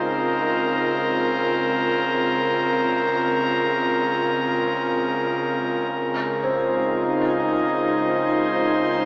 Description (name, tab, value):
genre	ambient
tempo	free time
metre	none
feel	none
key	unclear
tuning	A4 = 442 Hz
part	airy breathy pad	sustained chords	0.0-9.1 s	Db3 to C5	-19 LUFS	equal	chorus
part	twinkling granular texture	texture	6.4-9.1 s	Ab6	-40 LUFS	equal	none
part	felt-muted upright piano	arpeggios	6.4-9.1 s	C4	-27 LUFS	equal	analog chorus, analog delay
room	wet plate reverb, RT60 3.3 s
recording	dreamy mix soaked in reverb, AM radio sound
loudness	-19 LUFS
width	side -32 dB against mid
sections	0.0-5.9 A section; 5.9-9.1 B section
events	none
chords	0.0 Bbm7/Db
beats	free time